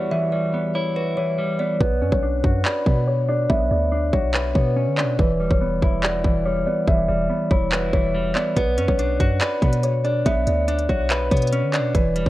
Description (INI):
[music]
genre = hip hop, trap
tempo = 142 BPM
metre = 4/4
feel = half-time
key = B minor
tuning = A4 = 440 Hz
[part]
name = kalimba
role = melody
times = 0.0-12.3 s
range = B4 to E5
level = -23 LUFS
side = left 1 dB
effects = low-pass filter
[part]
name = semi-hollow electric guitar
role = accompaniment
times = 0.0-12.3 s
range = E3 to B4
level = -26 LUFS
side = equal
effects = low-pass filter
[part]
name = mellow brass ensemble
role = sustained chords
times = 0.0-1.8 s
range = E2 to F#4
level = -34 LUFS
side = right 2 dB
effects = none
[part]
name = warm 808-style bass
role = bass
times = 1.8-12.3 s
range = E1 to D3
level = -23 LUFS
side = equal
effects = none
[part]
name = trap drum kit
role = drums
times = 1.8-12.3 s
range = handclaps, hi-hat, kick drum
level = -22 LUFS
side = equal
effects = none
[sound]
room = light reverb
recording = worn, warbling old tape, cassette tape, warbly pitch drift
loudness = -18 LUFS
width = side -16 dB against mid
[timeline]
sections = 0.0-1.8 A section; 1.8-12.3 B section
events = hi-hats muted 1.8-8.6; filter sweep 1.8-8.6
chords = 0.0 Emadd9; 1.8 Bmadd9; 5.2 Emadd9; 8.6 Bmadd9